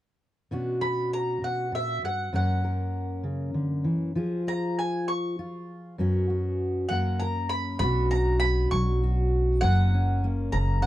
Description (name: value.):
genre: acoustic folk duo or small band.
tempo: 66 BPM (dotted quarters).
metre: 6/8.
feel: straight.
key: B harmonic minor.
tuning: A4 = 440 Hz.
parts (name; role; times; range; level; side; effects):
fingerpicked steel-string acoustic guitar; accompaniment; 0.5-10.9 s; F#2 to A#4; -26 LUFS; equal; none.
mandolin; melody; 0.8-10.9 s; E5 to C#6; -30 LUFS; equal; none.
upright bass; bass; 7.8-10.9 s; F#1 to B1; -24 LUFS; equal; none.
room: little or no reverb.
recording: dry, close 1970s-style studio recording.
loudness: -24 LUFS.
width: side -14 dB against mid.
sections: 0.5-7.8 A section; 7.8-10.9 B section.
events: none.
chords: 0.5 Bmadd9; 2.3 F#; 4.2 C#/E#; 6.0 F#sus4; 6.9 F#; 7.8 Bmadd9; 9.6 F#.